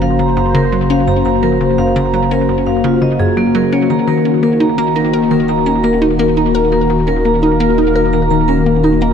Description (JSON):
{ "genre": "ambient, sequencer-driven space music", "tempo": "85 BPM", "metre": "4/4", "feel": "straight", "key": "unclear", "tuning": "A4 = 441 Hz", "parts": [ { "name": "sweeping resonant pad", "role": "sustained chords", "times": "0.0-9.1 s", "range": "Db3 to C5", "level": "-14 LUFS", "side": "left 3 dB", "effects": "chorus" }, { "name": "vibraphone with medium hard mallets", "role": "arpeggios", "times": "0.0-9.1 s", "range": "Bb3 to Bb5", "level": "-18 LUFS", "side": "right 4 dB", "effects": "auto-pan, tape echo" }, { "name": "hollow square pluck", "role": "riff", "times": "0.0-9.1 s", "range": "Gb2 to Bb4", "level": "-16 LUFS", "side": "equal", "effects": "chorus, tape echo" }, { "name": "round analog bass", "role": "bass", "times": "0.0-9.1 s", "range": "Eb1 to Gb1", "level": "-22 LUFS", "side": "equal", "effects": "none" } ], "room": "wet huge ambient reverb, RT60 7.7 s", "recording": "none", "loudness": "-11 LUFS", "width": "side -7 dB against mid", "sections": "0.0-9.1 A section", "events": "none", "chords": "0.0 Gb; 3.9 Ebm" }